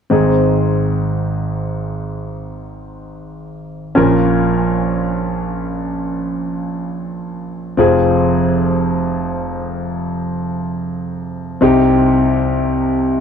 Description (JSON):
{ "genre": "pop", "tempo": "free time", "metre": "none", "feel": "none", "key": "Ab major", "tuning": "A4 = 440 Hz", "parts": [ { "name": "clear grand piano", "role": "accompaniment", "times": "0.1-13.2 s", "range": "F1 to Bb4", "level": "-15 LUFS", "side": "equal", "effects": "none" } ], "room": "light reverb", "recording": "dark, warm production", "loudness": "-15 LUFS", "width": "side -7 dB against mid", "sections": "0.1-13.2 A section", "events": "none", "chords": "0.1 Ab; 4.0 Bbm; 7.8 Fm; 11.6 Cm" }